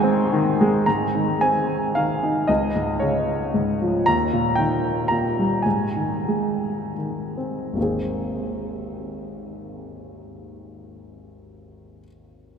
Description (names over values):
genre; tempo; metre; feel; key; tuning
classical, lyrical solo piano; 71-119 BPM; 3/4; rubato; Ab major; A4 = 440 Hz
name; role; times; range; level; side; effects
clear concert grand piano; solo; 0.0-12.6 s; Ab1 to Bb5; -20 LUFS; equal; none
room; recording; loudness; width
wet cathedral reverb, RT60 6.9 s; in a vast, echoing space; -20 LUFS; side -7 dB against mid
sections
0.9-7.8 A section; 7.8-12.4 B section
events
slowing down 4.1-7.8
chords
0.0 Ab; 2.5 Dbadd9; 4.1 Eb; 5.7 Ab; 7.8 Abadd9